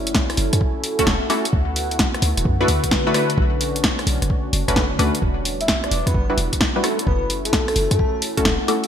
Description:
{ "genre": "UK garage, two-step garage", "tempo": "130 BPM", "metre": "4/4", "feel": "swing 66% on 16ths", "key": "unclear", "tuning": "A4 = 440 Hz", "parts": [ { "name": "warm analog pad", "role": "sustained chords", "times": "0.0-8.9 s", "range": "G3 to F#4", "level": "-31 LUFS", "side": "equal", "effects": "lush chorus, sidechain pumping" }, { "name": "short 808-style bass", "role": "bass", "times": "0.0-8.6 s", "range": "D1 to F#2", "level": "-22 LUFS", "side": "equal", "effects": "none" }, { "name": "deep dark ambient pad", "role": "texture", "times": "0.0-8.9 s", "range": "D3 to A5", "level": "-28 LUFS", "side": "left 1 dB", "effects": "chorus, built-in reverb, sidechain pumping" }, { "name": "electronic kick drum", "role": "drums", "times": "0.1-8.6 s", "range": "none", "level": "-23 LUFS", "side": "equal", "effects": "overdrive" }, { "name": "punchy analog drum machine", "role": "drums", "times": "0.1-8.9 s", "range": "hi-hat, rim click, snare drum, woodblock", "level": "-22 LUFS", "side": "equal", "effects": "gated reverb" }, { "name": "punchy chord stab", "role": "stabs", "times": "1.0-8.8 s", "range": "G3 to B4", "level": "-22 LUFS", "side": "equal", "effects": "chorus, ping-pong delay" }, { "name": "airy dreamy lead", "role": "melody", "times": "5.6-8.2 s", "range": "A4 to E5", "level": "-25 LUFS", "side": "left 1 dB", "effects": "chorus, ping-pong delay" } ], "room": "moderate lush hall reverb, RT60 1.6 s, digital ambience", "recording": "bright 1980s-style digital production", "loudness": "-17 LUFS", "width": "side -9 dB against mid", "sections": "0.0-8.9 A section", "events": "none", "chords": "0.0 F#m7; 1.5 D6; 3.4 Bm9; 5.2 Em7; 6.8 F#m7" }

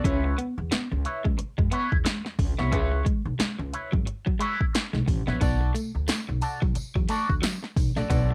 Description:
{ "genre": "funk", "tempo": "89 BPM", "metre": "4/4", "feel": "swing 60% on 16ths", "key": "unclear", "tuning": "A4 = 440 Hz", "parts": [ { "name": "electric guitar with an envelope filter", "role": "accompaniment", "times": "0.0-8.3 s", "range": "E4 to D5", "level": "-32 LUFS", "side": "equal", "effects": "wah, lush chorus, cassette tape" }, { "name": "electric guitar at the edge of break-up", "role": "riff", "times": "0.0-8.3 s", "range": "F#3 to C#4", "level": "-35 LUFS", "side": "equal", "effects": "cassette tape" }, { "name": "upright bass", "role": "bass", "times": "0.0-8.3 s", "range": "G#1 to F#2", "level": "-30 LUFS", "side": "equal", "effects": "none" }, { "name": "deep house drum kit", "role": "drums", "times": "0.0-8.3 s", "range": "hi-hat, kick drum, snare drum", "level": "-28 LUFS", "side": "equal", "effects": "cassette tape" }, { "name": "tambourine", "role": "percussion", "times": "5.4-8.3 s", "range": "none", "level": "-45 LUFS", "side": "equal", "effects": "none" } ], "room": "light reverb", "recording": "home recording on cassette", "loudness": "-26 LUFS", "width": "mono", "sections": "0.0-8.3 A section", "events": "none", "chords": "0.0 C#m7; 5.4 Bm7" }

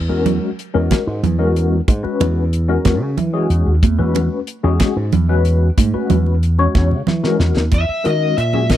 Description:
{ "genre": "electric jazz fusion", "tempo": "62 BPM (dotted quarters)", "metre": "6/8", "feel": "straight", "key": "E lydian", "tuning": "A4 = 440 Hz", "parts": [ { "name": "slap bass with an envelope filter", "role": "bass", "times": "0.0-8.8 s", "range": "D#2 to E3", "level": "-16 LUFS", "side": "equal", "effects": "none" }, { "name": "mellow tine electric piano", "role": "accompaniment", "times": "0.1-8.8 s", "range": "G#3 to C#5", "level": "-20 LUFS", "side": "left 4 dB", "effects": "medium tremolo, phaser" }, { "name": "congas", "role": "percussion", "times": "0.1-8.8 s", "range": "none", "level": "-22 LUFS", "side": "right 9 dB", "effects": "none" }, { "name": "damped 70s drum kit", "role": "drums", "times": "0.3-8.8 s", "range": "hi-hat, kick drum, snare drum", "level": "-18 LUFS", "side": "equal", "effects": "none" }, { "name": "smooth overdriven lead guitar", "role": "melody", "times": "7.7-8.8 s", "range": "D#5 to E5", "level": "-19 LUFS", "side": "left 2 dB", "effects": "slapback echo" } ], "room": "small room ambience", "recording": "dry, close 1970s-style studio recording", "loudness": "-14 LUFS", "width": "side -12 dB against mid", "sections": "0.0-7.7 A section; 7.7-8.8 B section", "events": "drum fill 6.7-7.7", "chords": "0.0 E; 7.7 F#13/E" }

